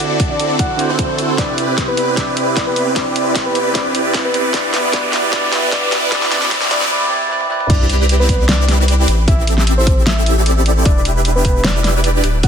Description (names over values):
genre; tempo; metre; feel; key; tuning
future bass; 152 BPM; 4/4; half-time; unclear; A4 = 441 Hz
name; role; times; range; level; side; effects
bell-like tine electric piano; accompaniment; 0.0-7.7 s; B2 to D5; -22 LUFS; right 2 dB; phaser, sidechain pumping, ping-pong delay
supersaw chords; riff; 0.0-12.5 s; B3 to E5; -18 LUFS; right 1 dB; phaser, sidechain pumping
pop drum kit; drums; 0.0-12.5 s; crash cymbal, hi-hat, snare drum, toms; -20 LUFS; equal; high-pass filter on hats, high-pass filter on snare, high-pass filter on toms, high-pass filter on cymbals
electronic kick drum; drums; 0.2-12.5 s; none; -16 LUFS; equal; none
soft octave-layered synth lead; melody; 0.3-12.5 s; B4 to F#5; -22 LUFS; left 1 dB; chorus, sidechain pumping, ping-pong delay
riser; sound effects; 3.9-6.9 s; none; -24 LUFS; right 1 dB; none
saturated sub bass; bass; 7.7-12.5 s; D1 to C2; -15 LUFS; equal; sidechain pumping
room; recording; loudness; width
moderate lush hall reverb, RT60 2.0 s; dense, heavily limited modern master, high-pass filter; -13 LUFS; side -7 dB against mid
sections
0.0-7.7 A section; 7.7-12.5 B section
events
build-up 0.0-7.7; filter sweep on supersaw synth 0.0-7.7; filter sweep 0.0-7.7; drum fill 1.4-6.9, 7.4; riser 3.9-6.9; drop 7.7-12.5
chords
0.0 D9; 1.4 Cmaj9; 4.5 Em7; 5.9 D9; 7.7 Cmaj9; 9.1 Am7; 10.9 Em7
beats
0.20 0.59 0.99 | 1.38 1.78 2.17 2.57 | 2.96 3.36 3.75 4.14 | 4.54 4.93 5.33 5.72 | 6.12 6.51 6.91 7.30 | 7.70 8.09 8.49 8.88 | 9.28 9.67 10.07 10.46 | 10.86 11.25 11.64 12.04 | 12.44